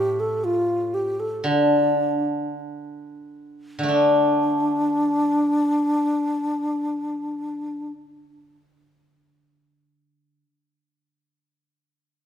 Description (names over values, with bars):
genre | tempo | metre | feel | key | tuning
chinese traditional, Chinese chamber ensemble | 42-63 BPM | 2/4 | rubato | unclear | A4 = 440 Hz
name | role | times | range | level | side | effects
breathy wooden-headed alto flute | melody | 0.0-7.9 s | D4 to A4 | -22 LUFS | equal | none
steel-string zither | accompaniment | 0.0-10.4 s | A2 to D4 | -23 LUFS | equal | none
room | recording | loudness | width
moderate recital hall reverb, RT60 1.8 s | minimal, uncompressed stereo recording | -20 LUFS | side -9 dB against mid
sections
0.0-3.9 A section; 3.9-9.4 B section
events
slowing down 0.0-3.9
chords
none